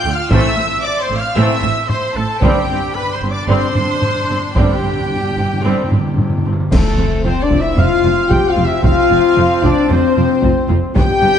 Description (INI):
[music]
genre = cinematic, epic orchestral film score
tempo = 113 BPM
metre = 4/4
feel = straight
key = unclear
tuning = A4 = 439 Hz
[part]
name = warm symphonic violin section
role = melody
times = 0.0-11.4 s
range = A4 to G6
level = -26 LUFS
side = left 3 dB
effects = none
[part]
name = clear symphonic violin section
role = second line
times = 0.0-11.4 s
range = G4 to G5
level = -26 LUFS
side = left 3 dB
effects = none
[part]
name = warm symphonic viola section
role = accompaniment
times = 0.0-11.3 s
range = A3 to F4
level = -25 LUFS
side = right 1 dB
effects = none
[part]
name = warm trumpet section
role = stabs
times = 0.0-11.4 s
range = G4 to G5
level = -21 LUFS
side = right 2 dB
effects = none
[part]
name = dark symphonic double bass section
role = bass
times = 0.0-11.3 s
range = F1 to D2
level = -21 LUFS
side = right 3 dB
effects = none
[part]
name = warm symphonic cello section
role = bass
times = 0.0-11.3 s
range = F2 to D3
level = -21 LUFS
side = right 3 dB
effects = none
[part]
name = clear trombone section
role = sustained chords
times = 0.3-11.4 s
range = D3 to C4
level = -24 LUFS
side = right 4 dB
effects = none
[part]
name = mellow French horn section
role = sustained chords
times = 0.3-11.4 s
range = A3 to C5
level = -17 LUFS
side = left 6 dB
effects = none
[part]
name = solo taiko drums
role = drums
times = 0.3-11.4 s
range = none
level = -19 LUFS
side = equal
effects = none
[part]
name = timpani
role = percussion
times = 2.4-6.7 s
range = G2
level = -22 LUFS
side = equal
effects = none
[part]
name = clash cymbals and concert bass drum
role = percussion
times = 6.7-7.7 s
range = none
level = -22 LUFS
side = equal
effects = none
[sound]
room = moderate concert hall reverb, RT60 2.2 s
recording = nothing above 10.4 kHz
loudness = -12 LUFS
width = side -8 dB against mid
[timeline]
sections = 0.0-6.7 A section; 6.7-11.4 B section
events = timpani fill 2.4-6.7; band accent 6.7-7.3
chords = 0.3 Am; 2.4 Gsus4; 6.7 F